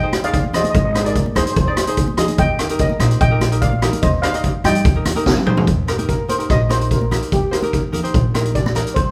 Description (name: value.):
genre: calypso.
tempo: 146 BPM.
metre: 4/4.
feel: straight.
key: Eb major.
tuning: A4 = 440 Hz.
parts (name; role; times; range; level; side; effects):
steel pan; melody; 0.0-9.1 s; G4 to G5; -24 LUFS; equal; none.
ukulele; accompaniment; 0.0-9.0 s; Eb4 to Eb5; -27 LUFS; equal; none.
upright bass; bass; 0.0-9.1 s; Ab1 to G2; -23 LUFS; equal; none.
street-band drum kit; drums; 0.1-9.1 s; hi-hat, kick drum, rim click, snare drum, toms; -21 LUFS; equal; none.
congas; percussion; 0.1-8.9 s; none; -29 LUFS; equal; none.
room: moderate large studio reverb, RT60 1.0 s.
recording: band playing live in one room.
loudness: -17 LUFS.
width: mono.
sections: 0.0-5.7 A section; 5.7-9.1 B section.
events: drum fill 5.2-5.7; steel pan solo 5.7-9.1.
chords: 0.0 Ab; 2.4 Ebmaj7; 4.0 Cm/Eb; 4.8 Eb.